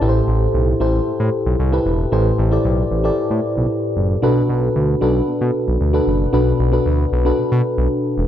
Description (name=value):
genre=1980s-style pop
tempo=114 BPM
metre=4/4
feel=straight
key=unclear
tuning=A4 = 440 Hz
part: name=mellow FM electric piano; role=accompaniment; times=0.0-8.3 s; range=A2 to D5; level=-17 LUFS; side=left 1 dB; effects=chorus
part: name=smooth synth bass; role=bass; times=0.0-8.3 s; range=E1 to B2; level=-18 LUFS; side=equal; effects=none
room=light reverb, digital ambience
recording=none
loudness=-15 LUFS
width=side -10 dB against mid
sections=0.0-8.3 A section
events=none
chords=0.0 Am7; 4.2 Bm7